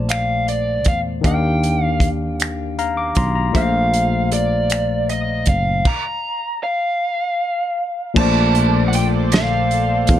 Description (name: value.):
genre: slow six-eight R&B.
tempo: 52 BPM (dotted quarters).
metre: 6/8.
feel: straight.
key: Bb major.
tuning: A4 = 440 Hz.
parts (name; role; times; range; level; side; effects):
barky tine electric piano; accompaniment; 0.0-10.2 s; Bb2 to D6; -21 LUFS; left 4 dB; overdrive, auto-pan, plate reverb.
sustaining fretless electric bass; bass; 0.0-10.2 s; Gb1 to E2; -21 LUFS; right 1 dB; none.
lead guitar through a small cranked amp; melody; 0.1-10.2 s; D5 to Bb5; -21 LUFS; right 1 dB; overdrive, plate reverb.
warm soul drum kit; drums; 0.1-10.2 s; crash cymbal, finger snaps, hi-hat, kick drum, snare drum; -19 LUFS; right 1 dB; none.
lush unison pad; sustained chords; 8.1-10.2 s; Bb2 to D5; -25 LUFS; equal; chorus, plate reverb.
room: moderate studio reverb, RT60 0.7 s.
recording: dark, warm production.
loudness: -16 LUFS.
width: side -11 dB against mid.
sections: 0.0-8.2 A section; 8.2-10.2 B section.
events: tine electric piano fill 2.4-3.5; stop 5.9-8.2.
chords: 0.0 Bbmaj9; 1.2 Ebmaj9; 3.5 Bbmaj9; 5.9 N.C.; 8.2 Bbmaj9.